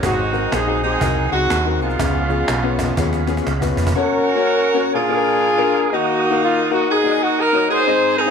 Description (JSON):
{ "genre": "uptempo gospel", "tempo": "122 BPM", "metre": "4/4", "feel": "swing 61% on 8ths", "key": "unclear", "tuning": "A4 = 440 Hz", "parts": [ { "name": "warm horn section", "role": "melody", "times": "0.0-8.3 s", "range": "G#3 to B#4", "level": "-17 LUFS", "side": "right 1 dB", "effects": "none" }, { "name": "clear concert grand piano", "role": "accompaniment", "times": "0.0-8.3 s", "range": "G#2 to F#5", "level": "-22 LUFS", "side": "left 12 dB", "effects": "none" }, { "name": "tonewheel organ", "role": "sustained chords", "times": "0.0-8.3 s", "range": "G#4 to D#6", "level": "-28 LUFS", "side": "right 13 dB", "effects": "slow rotary speaker, chorus vibrato" }, { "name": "warm studio string section", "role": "sustained chords", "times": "0.0-3.9 s", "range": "E#3 to D#4", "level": "-32 LUFS", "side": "right 13 dB", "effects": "none" }, { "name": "hollow-body short-scale fingered electric bass", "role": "bass", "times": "0.0-3.9 s", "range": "E#1 to D#2", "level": "-22 LUFS", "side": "right 1 dB", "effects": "none" }, { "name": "cajon", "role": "drums", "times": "0.0-4.0 s", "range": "none", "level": "-24 LUFS", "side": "right 2 dB", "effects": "none" } ], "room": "light reverb, small room ambience", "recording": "1960s-style stereo with parts hard left and right", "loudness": "-15 LUFS", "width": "side -6 dB against mid", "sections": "0.0-4.0 A section; 4.0-8.3 B section", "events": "drum fill 3.0-4.0", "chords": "0.0 G#7; 2.0 C#7; 4.0 F#; 4.9 A#7; 5.9 D#m" }